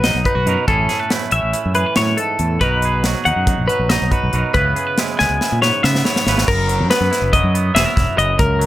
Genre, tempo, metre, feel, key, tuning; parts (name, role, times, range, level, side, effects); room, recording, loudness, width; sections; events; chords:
math rock and midwest emo; 280 BPM (eighths); 9/8; straight; A4 = 440 Hz
twangy electric guitar; accompaniment; 0.0-8.7 s; F#2 to B4; -23 LUFS; right 7 dB
twelve-string electric guitar; arpeggios; 0.0-8.7 s; A4 to G#5; -18 LUFS; left 2 dB
growling fingered electric bass; bass; 0.0-8.7 s; E1 to C#3; -19 LUFS; equal; overdrive
crisp fusion drum kit; drums; 0.0-8.7 s; crash cymbal, hi-hat, kick drum, snare drum; -20 LUFS; equal
little or no reverb; -14 LUFS; side -14 dB against mid
0.0-6.5 A section; 6.5-8.7 B section
drum fill 5.2-6.5
0.0 Bmaj7; 0.7 Amaj7; 2.6 Bmaj7; 4.5 C#m7; 6.5 F#7sus4